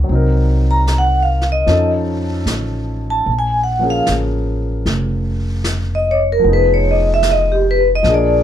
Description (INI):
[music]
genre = jazz ballad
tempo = 75 BPM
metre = 4/4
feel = swing 67% on 8ths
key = unclear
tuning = A4 = 442 Hz
[part]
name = warm concert grand piano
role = accompaniment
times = 0.0-8.4 s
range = F3 to Bb4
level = -22 LUFS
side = left 2 dB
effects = none
[part]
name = upright bass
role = bass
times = 0.0-8.4 s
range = F1 to F2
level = -17 LUFS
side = equal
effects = none
[part]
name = jazz brush drum kit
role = drums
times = 0.1-8.4 s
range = brushed snare drum, hi-hat, snare drum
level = -27 LUFS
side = left 1 dB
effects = none
[part]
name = vibraphone with medium hard mallets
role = melody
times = 0.7-8.4 s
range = G4 to Bb5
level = -15 LUFS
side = equal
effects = none
[sound]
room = little or no reverb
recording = dark, warm production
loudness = -13 LUFS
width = side -10 dB against mid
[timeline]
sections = 0.0-8.4 A section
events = vibraphone solo 0.0-8.4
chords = 0.1 Cm7b5; 1.7 F7b13; 3.3 Bbm7; 6.4 Fm7b5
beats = | 0.08 0.88 1.67 2.47 | 3.26 4.06 4.86 5.65 | 6.45 7.24 8.03